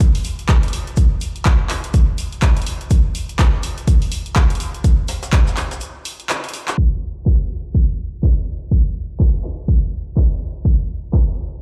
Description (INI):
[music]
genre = house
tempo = 124 BPM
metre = 4/4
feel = swing 59% on 16ths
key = none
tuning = none
[part]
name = electronic kick drum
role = drums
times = 0.0-11.2 s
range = none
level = -17 LUFS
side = equal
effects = overdrive
[part]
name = jazz brush drum kit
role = drums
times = 0.0-11.5 s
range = hi-hat, shaker, snare drum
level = -37 LUFS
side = equal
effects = none
[part]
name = punchy analog drum machine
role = drums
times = 0.0-11.2 s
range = crash cymbal, handclaps, hi-hat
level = -29 LUFS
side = equal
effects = low-pass filter on hats, low-pass filter on snare, low-pass filter on cymbals, low-pass filter on room
[sound]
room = little or no reverb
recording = played on a big sound system in a bare room, large studio reverb, low-pass filter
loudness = -18 LUFS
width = mono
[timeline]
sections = 0.0-6.8 A section; 6.8-11.6 B section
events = break 5.8-6.8; drum fill 6.3-6.8; filter sweep 6.8-11.6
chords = none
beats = 0.01 0.49 | 0.97 1.46 1.94 2.42 | 2.91 3.39 3.88 4.36 | 4.84 5.33 5.81 6.29 | 6.78 7.26 7.75 8.23 | 8.71 9.20 9.68 10.17 | 10.65 11.13